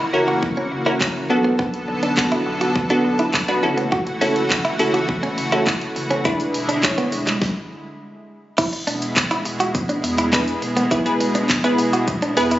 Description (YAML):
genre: dance-pop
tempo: 103 BPM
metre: 4/4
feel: straight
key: unclear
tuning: A4 = 438 Hz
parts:
  - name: lush unison pad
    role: sustained chords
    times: 0.0-12.6 s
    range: B2 to A4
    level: -25 LUFS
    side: equal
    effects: chorus, sidechain pumping
  - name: direct-recorded clean electric guitar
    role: riff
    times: 0.0-12.6 s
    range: G#3 to F#4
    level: -23 LUFS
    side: right 1 dB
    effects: analog chorus
  - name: saturated sub bass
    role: bass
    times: 0.0-12.6 s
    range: E1 to E2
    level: -30 LUFS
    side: equal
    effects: sidechain pumping
  - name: wavetable chord stab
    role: accompaniment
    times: 0.1-12.6 s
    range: B3 to C#5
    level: -21 LUFS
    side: equal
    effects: sidechain pumping
  - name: pop drum kit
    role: drums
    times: 0.4-12.6 s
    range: crash cymbal, handclaps, hi-hat, kick drum, shaker, snare drum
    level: -23 LUFS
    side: equal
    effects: none
room: moderate lush hall reverb, RT60 1.8 s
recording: recorded on a phone in the room, club reverb, nothing above 7.7 kHz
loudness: -17 LUFS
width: side -14 dB against mid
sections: 0.0-8.6 A section; 8.6-12.6 B section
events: stop 7.4-8.6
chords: 0.0 F#7; 1.3 Bm7; 3.6 F#m7; 6.3 E7; 8.6 E